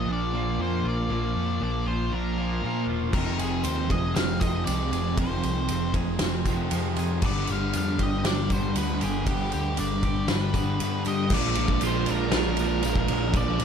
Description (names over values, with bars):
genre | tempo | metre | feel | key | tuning
rock, shoegaze and dream pop | 118 BPM | 4/4 | straight | unclear | A4 = 440 Hz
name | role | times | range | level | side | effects
octave-fuzz lead guitar | melody | 0.0-13.6 s | G4 to F5 | -33 LUFS | left 2 dB | distortion, analog delay
twangy electric guitar | arpeggios | 0.0-13.6 s | Eb3 to Ab4 | -38 LUFS | right 5 dB | wide subtle chorus, analog delay
crunchy overdriven guitar | riff | 0.0-11.3 s | F2 to Bb3 | -32 LUFS | right 1 dB | none
overdriven semi-hollow guitar | riff | 0.0-13.6 s | F2 to D4 | -32 LUFS | right 13 dB | reverse reverb
thick fuzz guitar | riff | 0.0-13.6 s | F2 to Bb3 | -32 LUFS | left 10 dB | distortion, wide subtle chorus
overdriven picked electric bass | bass | 0.0-13.6 s | E1 to Bb2 | -29 LUFS | equal | none
loose indie drum kit | drums | 3.1-13.6 s | crash cymbal, kick drum, ride cymbal, snare drum | -28 LUFS | equal | none
tambourine | percussion | 3.4-13.5 s | none | -44 LUFS | left 5 dB | none
room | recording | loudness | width
light reverb | none | -23 LUFS | side -7 dB against mid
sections
0.0-11.3 A section; 11.3-13.6 B section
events
none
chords
0.0 Bb; 3.1 Fm7; 7.2 G; 11.3 Bb7